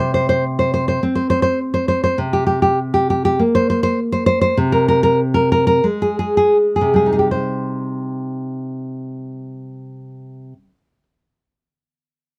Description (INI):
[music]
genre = romantic piece for solo classical guitar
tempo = 39-53 BPM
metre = 2/4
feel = rubato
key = C minor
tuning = A4 = 440 Hz
[part]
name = nylon-string guitar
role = solo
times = 0.0-11.0 s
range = C3 to C5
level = -18 LUFS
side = equal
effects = none
[sound]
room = light reverb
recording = none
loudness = -17 LUFS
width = mono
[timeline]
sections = 0.0-2.2 A section; 2.2-7.3 B section; 7.3-12.4 C section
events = slowing down 1.0-7.3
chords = 0.0 N.C.; 2.2 Gmadd11/C; 4.6 Abadd9/C; 7.3 Cm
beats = 1.02 | 2.18 3.41 | 4.58 5.84 | 7.31 8.72 | 10.13